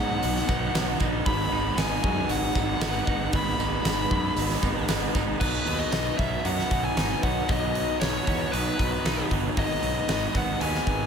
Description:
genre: rock, shoegaze and dream pop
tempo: 116 BPM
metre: 4/4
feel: straight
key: B major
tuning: A4 = 440 Hz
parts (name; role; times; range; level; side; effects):
- nasal lead guitar with a parked wah; melody; 0.0-11.1 s; B4 to B5; -30 LUFS; left 3 dB; overdrive, digital delay
- granular cloud pad; sustained chords; 0.3-11.1 s; D#4 to F#5; -38 LUFS; right 1 dB; none
- direct-recorded clean electric guitar; arpeggios; 0.0-11.1 s; F#3 to D#4; -38 LUFS; right 12 dB; lush chorus, digital delay
- overdriven electric guitar; riff; 0.0-11.1 s; G#2 to D#4; -31 LUFS; right 14 dB; reverse reverb
- raw garage guitar; riff; 0.0-11.1 s; G#2 to B4; -32 LUFS; left 12 dB; overdrive, wide subtle chorus
- fuzz fingered electric bass; bass; 0.0-11.0 s; G1 to G#2; -31 LUFS; equal; overdrive
- huge arena drum kit; drums; 0.2-11.0 s; crash cymbal, hi-hat, kick drum, snare drum; -29 LUFS; equal; none
- tambourine; percussion; 0.2-5.3 s; none; -41 LUFS; right 14 dB; none
room: light reverb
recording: none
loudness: -23 LUFS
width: side -7 dB against mid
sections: 0.0-5.4 A section; 5.4-11.1 B section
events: none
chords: 0.0 Badd9; 1.3 G#m7; 5.4 Badd9; 9.6 G#m7

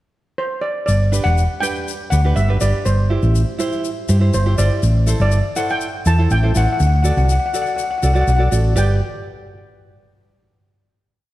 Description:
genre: calypso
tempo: 122 BPM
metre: 4/4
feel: straight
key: G major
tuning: A4 = 440 Hz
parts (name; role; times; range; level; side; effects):
- steel pan; melody; 0.4-9.0 s; C5 to A5; -22 LUFS; left 1 dB; none
- hollow-body short-scale fingered electric bass; bass; 0.9-9.0 s; E1 to G2; -15 LUFS; equal; none
- tube shaker; percussion; 0.9-9.0 s; none; -32 LUFS; left 8 dB; none
- tenor ukulele; accompaniment; 1.1-9.0 s; D4 to D5; -24 LUFS; right 3 dB; none
room: light reverb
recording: dark, warm production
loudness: -15 LUFS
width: side -16 dB against mid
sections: 0.0-0.9 pickup bar; 0.9-8.8 verse; 8.8-10.7 final chord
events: none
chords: 0.0 N.C.; 0.9 G; 2.9 C/G; 6.8 D; 8.8 G

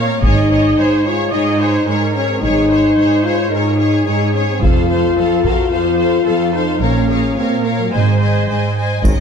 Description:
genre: cinematic, epic orchestral film score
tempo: 109 BPM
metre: 4/4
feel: straight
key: Ab major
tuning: A4 = 436 Hz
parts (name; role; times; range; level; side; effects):
- rich symphonic violin section; melody; 0.0-9.2 s; Db5 to Ab5; -25 LUFS; left 5 dB; none
- rich symphonic violin section; second line; 0.0-9.2 s; Db4 to Eb5; -23 LUFS; left 2 dB; none
- rich symphonic viola section; accompaniment; 0.0-9.1 s; Db3 to Eb5; -23 LUFS; right 2 dB; none
- mellow French horn section; sustained chords; 0.0-9.2 s; Gb3 to Gb4; -16 LUFS; left 3 dB; none
- rich chamber cello section; bass; 0.0-9.1 s; F2 to Bb2; -19 LUFS; right 4 dB; none
- clear symphonic double bass section; bass; 0.2-9.1 s; F1 to Bb1; -20 LUFS; right 4 dB; none
- taiko ensemble; drums; 0.2-1.3, 4.6-5.7, 9.0-9.2 s; none; -17 LUFS; equal; none
- clear tuba; bass; 9.0-9.1 s; Ab1; -18 LUFS; right 4 dB; none
- triangle; percussion; 9.1-9.2 s; none; -32 LUFS; equal; none
room: moderate scoring stage reverb, RT60 1.8 s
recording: dark, warm production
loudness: -12 LUFS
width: side -6 dB against mid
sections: 0.0-9.0 A section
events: none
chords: 0.2 Absus4; 4.6 F; 6.8 Bbm; 7.9 Ab

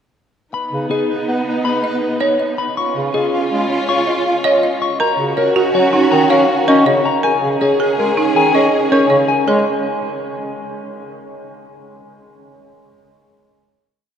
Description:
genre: classical, minimalist pattern music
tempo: 161 BPM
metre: 6/4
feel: straight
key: G# dorian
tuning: A4 = 442 Hz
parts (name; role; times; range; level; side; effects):
- electric guitar at the edge of break-up; melody; 0.5-9.7 s; G#4 to C#6; -19 LUFS; left 4 dB; none
- warm soprano saxophone; second line; 0.5-9.2 s; E#4 to B4; -23 LUFS; right 1 dB; none
- rich studio string section; sustained chords; 0.5-9.3 s; B3 to G#4; -21 LUFS; right 1 dB; none
- clear bass clarinet; accompaniment; 0.7-9.7 s; C#3 to C#4; -20 LUFS; equal; none
- folk marimba with hard mallets; arpeggios; 0.9-9.7 s; D#4 to D#5; -20 LUFS; right 4 dB; none
room: wet cathedral reverb, RT60 6.2 s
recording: recorded in a church or concert hall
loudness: -13 LUFS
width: side -8 dB against mid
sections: 0.5-9.5 A section; 9.5-11.7 final chord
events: none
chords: 0.5 G#m (rootless); 2.8 C#; 5.0 D#m7; 7.2 A#m7; 9.5 N.C.

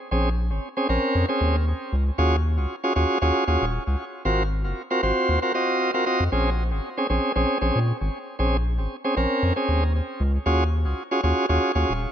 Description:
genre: deep house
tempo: 116 BPM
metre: 4/4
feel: swing 53% on 16ths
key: Bb minor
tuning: A4 = 440 Hz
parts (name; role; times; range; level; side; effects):
- bright tonewheel organ; stabs; 0.1-11.9 s; C4 to Eb5; -23 LUFS; right 1 dB; overdrive, stopped rotary speaker, vintage 12-bit sampler grit, tape echo
- round analog bass; bass; 0.1-12.1 s; Eb1 to Bb2; -23 LUFS; equal; none
room: light reverb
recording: echo-heavy mix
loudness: -21 LUFS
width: side -9 dB against mid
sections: 0.0-12.1 A section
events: none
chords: 0.0 Bbm9; 2.2 Ebm11; 4.3 Ab13; 6.3 Bbm9; 10.5 Ebm11

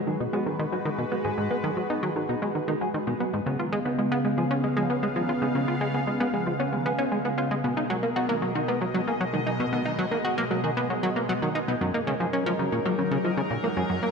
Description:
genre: ambient, sequencer-driven space music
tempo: 115 BPM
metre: 4/4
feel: straight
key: unclear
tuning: A4 = 441 Hz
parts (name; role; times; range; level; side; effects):
- sweeping resonant pad; sustained chords; 0.0-14.1 s; B2 to E#5; -29 LUFS; equal; chorus
- mellow electric guitar; arpeggios; 0.0-14.1 s; D#3 to G#4; -33 LUFS; right 1 dB; auto-pan, tape echo
- bubbling stepped-filter texture; texture; 2.1-14.1 s; G#3 to G#4; -40 LUFS; right 1 dB; none
- plucky analog bass; riff; 0.1-14.1 s; F#2 to F#4; -27 LUFS; equal; tape echo
room: wet echo chamber reverb, RT60 2.5 s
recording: echo-heavy mix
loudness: -24 LUFS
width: side -5 dB against mid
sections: 0.0-14.1 A section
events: none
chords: 0.0 G#m7; 3.5 C#7; 7.6 Bmaj7; 11.8 F#6

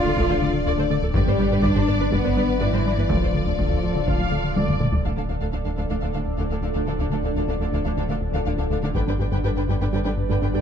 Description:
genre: cinematic, hybrid orchestral and electronic film score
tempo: 123 BPM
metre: 4/4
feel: straight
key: D dorian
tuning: A4 = 441 Hz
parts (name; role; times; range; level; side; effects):
- warm symphonic violin section; melody; 0.0-4.8 s; D5; -30 LUFS; left 7 dB; none
- warm symphonic violin section; second line; 0.0-10.6 s; E4 to G5; -34 LUFS; left 3 dB; none
- dark French horn section; sustained chords; 0.0-4.8 s; E3 to F4; -28 LUFS; left 3 dB; none
- warbly tape-like pad; sustained chords; 0.0-10.6 s; D3 to D5; -29 LUFS; left 2 dB; chorus, built-in reverb, phaser
- soft dub sub bass; bass; 0.0-10.6 s; D1 to G1; -29 LUFS; equal; none
- warm symphonic cello section; bass; 0.0-10.6 s; D2 to F4; -30 LUFS; right 4 dB; none
- warm symphonic double bass section; bass; 0.0-5.0 s; D2 to G2; -29 LUFS; right 5 dB; none
- warm symphonic viola section; accompaniment; 0.1-10.6 s; D3 to F5; -32 LUFS; right 2 dB; none
- soft round pluck; arpeggios; 0.1-10.6 s; D3 to G4; -33 LUFS; right 5 dB; chorus, ping-pong delay
- rubbery square bass; riff; 0.1-10.6 s; D2 to G3; -27 LUFS; left 3 dB; none
- taiko ensemble; drums; 0.2-6.0, 8.9-9.9 s; none; -26 LUFS; equal; none
room: moderate scoring stage reverb, RT60 1.6 s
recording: dark, warm production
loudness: -20 LUFS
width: side -8 dB against mid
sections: 0.0-5.0 A section; 5.0-10.6 B section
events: drum fill 4.6-5.0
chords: 0.0 Dm; 1.1 G; 3.1 Dm; 9.0 G

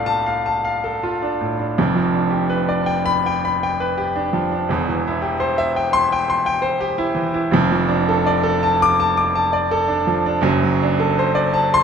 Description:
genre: classical, romantic character piece for solo piano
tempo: 82 BPM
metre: 4/4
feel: rubato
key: unclear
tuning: A4 = 443 Hz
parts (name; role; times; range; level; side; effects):
- bright grand piano; solo; 0.0-11.8 s; E1 to D6; -16 LUFS; equal; none
room: moderate recital hall reverb, RT60 1.7 s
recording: close, detailed microphones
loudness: -16 LUFS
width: side -7 dB against mid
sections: 0.0-11.8 A section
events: none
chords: 0.0 Dm/C; 1.8 G7/F; 4.7 C/E; 7.5 Dm/F; 10.4 D7/F#

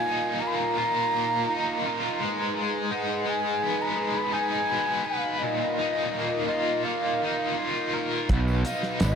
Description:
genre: psychedelic rock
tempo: 84 BPM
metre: 4/4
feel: straight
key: unclear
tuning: A4 = 440 Hz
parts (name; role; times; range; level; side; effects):
- mellow silver concert flute; melody; 0.0-9.2 s; Eb5 to Cb6; -28 LUFS; left 1 dB; analog delay
- bright large flute ensemble; sustained chords; 0.0-9.2 s; D#4 to Ab5; -33 LUFS; right 3 dB; none
- overdriven electric guitar; riff; 0.0-9.2 s; Bb2 to Cb5; -28 LUFS; left 1 dB; tremolo, analog delay
- fuzz picked electric bass; bass; 8.3-9.2 s; Ab1 to B1; -24 LUFS; right 1 dB; overdrive
- cloth-damped thuddy drum kit; drums; 8.3-9.2 s; hi-hat, kick drum, snare drum; -25 LUFS; right 1 dB; none
- tambourine; percussion; 8.5-9.2 s; none; -44 LUFS; right 8 dB; none
room: light reverb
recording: echo-heavy mix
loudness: -24 LUFS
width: side -7 dB against mid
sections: 0.0-9.2 A section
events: none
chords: 0.0 Bbsus4; 2.2 Abm; 5.4 Bbsus4; 8.3 B

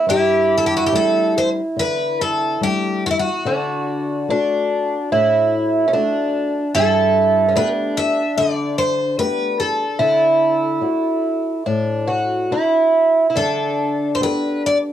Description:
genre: fado-style ballad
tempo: 72 BPM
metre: 4/4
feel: rubato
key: G major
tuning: A4 = 436 Hz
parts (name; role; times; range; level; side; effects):
- picked twelve-string acoustic guitar; second line; 0.0-14.9 s; C#4 to F#4; -18 LUFS; right 2 dB; none
- flamenco guitar; accompaniment; 0.0-14.9 s; G2 to A4; -25 LUFS; left 4 dB; none
- picked twelve-string acoustic guitar; melody; 0.1-14.8 s; E4 to E5; -21 LUFS; left 3 dB; cassette tape
room: light reverb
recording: home recording on cassette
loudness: -16 LUFS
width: side -10 dB against mid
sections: 0.1-14.9 A section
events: none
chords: 0.1 Gsus2; 3.5 D; 6.8 Gadd9; 10.0 Dadd9; 13.4 Gadd9/D

